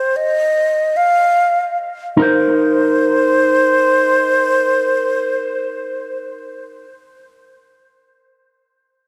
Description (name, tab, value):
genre	reggae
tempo	free time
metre	none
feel	none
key	C minor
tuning	A4 = 440 Hz
part	mellow hollow concert flute	melody	0.0-6.2 s	C5 to F5	-17 LUFS	equal	dub echo
part	electric guitar with an envelope filter	accompaniment	2.2-6.9 s	Eb4 to C5	-20 LUFS	equal	dub echo
room	moderate spring reverb, RT60 2.5 s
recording	none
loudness	-15 LUFS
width	mono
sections	0.0-2.2 A section; 2.2-5.4 B section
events	break 0.0-2.2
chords	0.0 N.C.; 2.2 Cm7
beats	free time